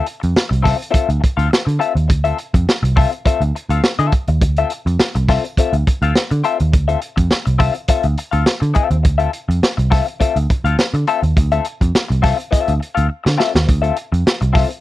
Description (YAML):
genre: funk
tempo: 104 BPM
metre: 4/4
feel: straight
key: D minor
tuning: A4 = 439 Hz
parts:
  - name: clean electric guitar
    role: accompaniment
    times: 0.0-14.7 s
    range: C4 to F5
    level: -19 LUFS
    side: left 7 dB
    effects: wah
  - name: crunchy breakbeat drum kit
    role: drums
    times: 0.1-14.8 s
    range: hi-hat, kick drum, snare drum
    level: -16 LUFS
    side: right 1 dB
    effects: none
  - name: vintage muted picked electric bass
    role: bass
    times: 0.2-14.6 s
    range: C2 to D3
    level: -16 LUFS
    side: right 1 dB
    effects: none
room: little or no reverb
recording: dry, close 1970s-style studio recording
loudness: -14 LUFS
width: side -15 dB against mid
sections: 0.0-13.7 A section; 13.7-14.8 A section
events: drum fill 13.1-13.7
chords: 0.0 Dm9